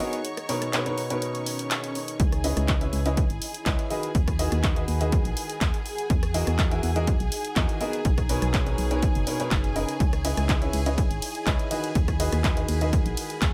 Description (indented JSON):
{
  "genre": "piano house",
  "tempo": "123 BPM",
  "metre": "4/4",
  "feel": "straight",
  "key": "G# minor",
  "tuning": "A4 = 440 Hz",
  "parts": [
    { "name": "clear symphonic violin section", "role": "sustained chords", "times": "0.0-13.5 s", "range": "G#4 to C#6", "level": "-38 LUFS", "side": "equal", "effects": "sidechain pumping" },
    { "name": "clear upright piano", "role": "riff", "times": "0.0-13.5 s", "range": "B2 to E5", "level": "-33 LUFS", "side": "equal", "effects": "sidechain pumping, delay" },
    { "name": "punchy analog drum machine", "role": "drums", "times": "0.0-13.5 s", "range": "handclaps, hi-hat, ride cymbal, rim click", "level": "-34 LUFS", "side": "equal", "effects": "none" },
    { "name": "deep dark ambient pad", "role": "texture", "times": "0.0-13.5 s", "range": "D#4 to B5", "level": "-40 LUFS", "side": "equal", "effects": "chorus, built-in reverb, sidechain pumping" },
    { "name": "swell", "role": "sound effects", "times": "1.4-2.2 s", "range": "none", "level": "-40 LUFS", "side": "equal", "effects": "none" },
    { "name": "organ-like FM bass", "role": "bass", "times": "2.2-13.5 s", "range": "F#1 to E2", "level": "-29 LUFS", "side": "equal", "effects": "tube saturation, sidechain pumping" },
    { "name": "electronic kick drum", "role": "drums", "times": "2.2-13.5 s", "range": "none", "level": "-27 LUFS", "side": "equal", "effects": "none" }
  ],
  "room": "little or no reverb",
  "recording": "none",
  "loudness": "-25 LUFS",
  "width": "mono",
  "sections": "0.0-13.5 A section",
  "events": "swell 1.4-2.2",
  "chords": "0.2 Bmaj9; 2.2 C#m9; 3.9 G#m7/D#; 6.1 Emaj9#11; 8.1 Bmaj9; 10.0 C#m9; 11.7 G#m7/D#",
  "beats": "| 0.25 0.73 1.22 1.71 | 2.20 2.69 3.17 3.66 | 4.15 4.64 5.12 5.61 | 6.10 6.59 7.08 7.56 | 8.05 8.54 9.03 9.52 | 10.00 10.49 10.98 11.47 | 11.95 12.44 12.93 13.42"
}